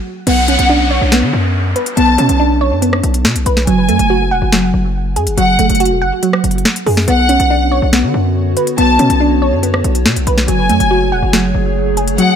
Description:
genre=hip hop, drill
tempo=141 BPM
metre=4/4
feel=half-time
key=unclear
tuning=A4 = 440 Hz
part: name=glassy wavetable pluck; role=arpeggios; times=0.0-12.4 s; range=F#3 to F#5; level=-15 LUFS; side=right 2 dB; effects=chorus, digital delay
part: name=dark studio violin section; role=second line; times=0.3-12.4 s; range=F#5 to A5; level=-17 LUFS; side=left 2 dB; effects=digital delay
part: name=distorted 808-style bass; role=bass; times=0.3-12.2 s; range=E1 to D3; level=-15 LUFS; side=equal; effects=distortion
part: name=drill drum kit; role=drums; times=0.3-12.3 s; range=crash cymbal, hi-hat, rim click, snare drum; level=-17 LUFS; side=left 1 dB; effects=none
part: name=downlifter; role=sound effects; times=0.3-3.7 s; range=none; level=-23 LUFS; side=equal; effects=none
part: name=warbly tape-like pad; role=sustained chords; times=7.7-12.4 s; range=D3 to C#5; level=-20 LUFS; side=left 1 dB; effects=chorus, built-in reverb, phaser
room=light reverb, digital ambience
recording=none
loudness=-10 LUFS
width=side -8 dB against mid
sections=0.3-12.4 A section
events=stop 0.0; kick muted 12.2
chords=0.3 Bmadd9; 3.7 F#madd9; 7.1 Bmadd9; 10.5 F#madd9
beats=| 0.27 0.69 1.12 1.54 | 1.97 2.40 2.82 3.25 | 3.67 4.10 4.52 4.95 | 5.38 5.80 6.23 6.65 | 7.08 7.50 7.93 8.35 | 8.78 9.21 9.63 10.06 | 10.48 10.91 11.33 11.76 | 12.18

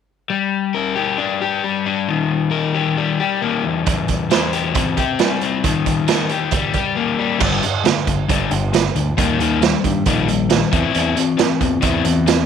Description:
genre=indie rock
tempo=135 BPM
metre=4/4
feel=straight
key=G minor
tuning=A4 = 440 Hz
part: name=overdriven semi-hollow guitar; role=riff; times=0.3-12.5 s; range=E2 to C5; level=-18 LUFS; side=left 7 dB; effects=none
part: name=raw garage drum kit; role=drums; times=3.9-12.4 s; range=crash cymbal, hi-hat, kick drum, snare drum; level=-19 LUFS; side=right 7 dB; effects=none
part: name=growling fingered electric bass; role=bass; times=7.4-12.4 s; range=G1 to G2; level=-22 LUFS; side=right 2 dB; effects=overdrive
room=light reverb, small room ambience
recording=1960s-style stereo with parts hard left and right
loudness=-16 LUFS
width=side -7 dB against mid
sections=0.3-7.4 A section; 7.4-12.5 B section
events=none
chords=0.3 Gm; 2.1 Eb; 3.6 C/E; 5.6 Eb; 7.4 G5; 9.2 Eb; 10.7 C/E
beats=| 0.31 0.75 1.20 1.64 | 2.09 2.53 2.98 3.42 | 3.87 4.31 4.76 5.20 | 5.64 6.09 6.53 6.97 | 7.42 7.86 8.30 8.74 | 9.19 9.63 10.07 10.51 | 10.96 11.40 11.84 12.28

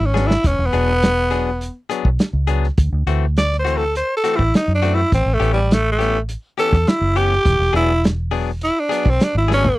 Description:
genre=straight-eighth soul blues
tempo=103 BPM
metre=4/4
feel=straight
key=unclear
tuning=A4 = 440 Hz
part: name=growling tenor saxophone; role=melody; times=0.0-9.8 s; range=G3 to D5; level=-18 LUFS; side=equal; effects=none
part: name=vintage muted fingered electric bass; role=bass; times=0.0-9.7 s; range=E1 to F#2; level=-19 LUFS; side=equal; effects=none
part: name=direct-recorded clean electric guitar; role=stabs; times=0.1-9.7 s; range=E3 to G#4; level=-23 LUFS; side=left 9 dB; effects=none
part: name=warm soul drum kit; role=drums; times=0.2-9.8 s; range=hi-hat, kick drum, snare drum, toms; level=-18 LUFS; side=equal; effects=none
room=little or no reverb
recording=dry, close 1970s-style studio recording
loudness=-15 LUFS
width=side -18 dB against mid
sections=0.0-9.8 A section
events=tenor saxophone solo 0.0-9.8; drum fill 0.2, 9.5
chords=0.0 E9; 2.8 D9; 5.1 A9; 7.5 E9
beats=| 0.45 1.03 1.61 2.20 | 2.78 3.36 3.95 4.53 | 5.11 5.70 6.28 6.87 | 7.45 8.03 8.62 9.20 | 9.79

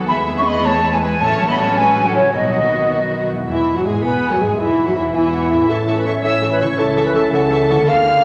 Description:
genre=classical, dramatic, fast romantic movement for symphony orchestra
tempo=108 BPM (dotted quarters)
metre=6/8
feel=straight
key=E major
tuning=A4 = 440 Hz
part: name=warm symphonic violin section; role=melody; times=0.0-8.2 s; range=E4 to F6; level=-29 LUFS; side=equal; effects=none
part: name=clear studio violin section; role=second line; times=0.0-7.8 s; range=E4 to C#6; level=-33 LUFS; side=equal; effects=none
part: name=warm symphonic viola section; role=accompaniment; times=0.0-7.8 s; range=E3 to A4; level=-27 LUFS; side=equal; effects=none
part: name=concert harp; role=arpeggios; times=0.0-8.2 s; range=E2 to C#5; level=-28 LUFS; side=equal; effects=none
part: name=dark symphonic cello section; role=bass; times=0.0-8.2 s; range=E2 to C#4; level=-28 LUFS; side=equal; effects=none
part: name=warm studio double bass section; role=bass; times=0.0-8.2 s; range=E1 to E2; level=-31 LUFS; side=equal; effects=none
part: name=hollow flute section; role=second line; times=0.1-8.2 s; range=C#5 to C#6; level=-21 LUFS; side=equal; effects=none
part: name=dark clarinet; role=second line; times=3.5-8.2 s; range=E4 to F5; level=-19 LUFS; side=equal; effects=none
part: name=clear French horn section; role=sustained chords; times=3.5-8.2 s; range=E3 to Ab4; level=-26 LUFS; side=equal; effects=none
room=wet scoring stage reverb, RT60 1.6 s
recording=none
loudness=-16 LUFS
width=mono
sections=0.0-3.5 A section; 3.5-8.2 B section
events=none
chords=0.1 E; 1.2 F#m/A; 2.3 B; 3.5 E; 5.7 A; 6.8 A/C#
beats=| 0.09 0.65 | 1.21 1.77 | 2.34 2.91 | 3.49 4.04 | 4.59 5.14 | 5.70 6.24 | 6.79 7.33 | 7.89

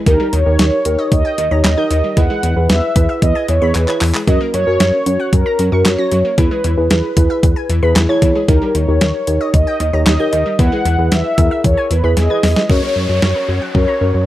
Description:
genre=synth-pop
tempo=114 BPM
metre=4/4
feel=straight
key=unclear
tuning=A4 = 441 Hz
part: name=analog pluck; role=arpeggios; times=0.0-14.1 s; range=D#3 to A#6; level=-25 LUFS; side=left 2 dB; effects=chorus, analog delay
part: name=downlifter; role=sound effects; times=0.0-0.1, 12.7-14.3 s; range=none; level=-28 LUFS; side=equal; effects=none
part: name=mellow synth brass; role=melody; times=0.1-14.2 s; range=G#4 to F#5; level=-18 LUFS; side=equal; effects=chorus
part: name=muted felt-like synth keys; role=accompaniment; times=0.1-14.3 s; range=C#4 to C#5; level=-19 LUFS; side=equal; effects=chorus
part: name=chorused synth bass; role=bass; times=0.1-14.3 s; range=D#2 to F#2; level=-16 LUFS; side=equal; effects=none
part: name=clean 12-bit digital drum machine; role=drums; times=0.1-13.9 s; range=handclaps, hi-hat, kick drum, snare drum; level=-15 LUFS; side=equal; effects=overdrive
room=light reverb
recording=dry, gritty hardware recording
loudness=-12 LUFS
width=side -14 dB against mid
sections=0.0-12.7 A section; 12.7-14.3 B section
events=drum fill 3.7-4.3, 12.2-12.7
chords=0.1 D#; 2.2 E; 4.3 F#; 6.4 E; 8.5 D#; 10.6 E; 12.7 F#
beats=| 0.07 0.59 1.12 1.64 | 2.17 2.70 3.22 3.75 | 4.28 4.80 5.33 5.85 | 6.38 6.91 7.43 7.96 | 8.49 9.01 9.54 10.06 | 10.59 11.12 11.64 12.17 | 12.70 13.22 13.75

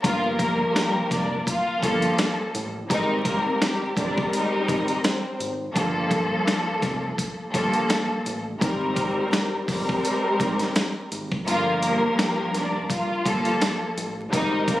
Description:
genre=hip hop, boom-bap hip-hop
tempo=84 BPM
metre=4/4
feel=swing 57% on 16ths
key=G phrygian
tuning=A4 = 439 Hz
part: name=warm studio violin section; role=melody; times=0.0-5.4, 11.5-14.8 s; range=G3 to F5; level=-28 LUFS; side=left 1 dB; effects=high-pass filter, low-pass filter, slapback echo
part: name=warm studio string section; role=accompaniment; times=0.0-14.8 s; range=G2 to Bb4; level=-24 LUFS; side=equal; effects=cassette tape, high-pass filter, low-pass filter
part: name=fat analog bass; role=bass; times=0.0-14.8 s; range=F1 to A1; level=-31 LUFS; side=equal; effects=none
part: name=dusty soul sampler-style drum kit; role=drums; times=0.0-14.8 s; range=hi-hat, kick drum, snare drum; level=-26 LUFS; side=equal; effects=none
room=light reverb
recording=recorded on a phone in the room, studio reverb, vinyl crackle, lossy compression artefacts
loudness=-22 LUFS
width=side -15 dB against mid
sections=0.0-14.8 A section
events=kick muted 11.5-12.9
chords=0.0 Gm9; 2.9 Abmaj9; 5.8 Gm9; 8.6 Abmaj9; 11.5 Gm9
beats=| 0.04 0.76 1.47 2.18 | 2.90 3.61 4.33 5.04 | 5.75 6.47 7.18 7.90 | 8.61 9.33 10.04 10.76 | 11.47 12.18 12.90 13.61 | 14.33

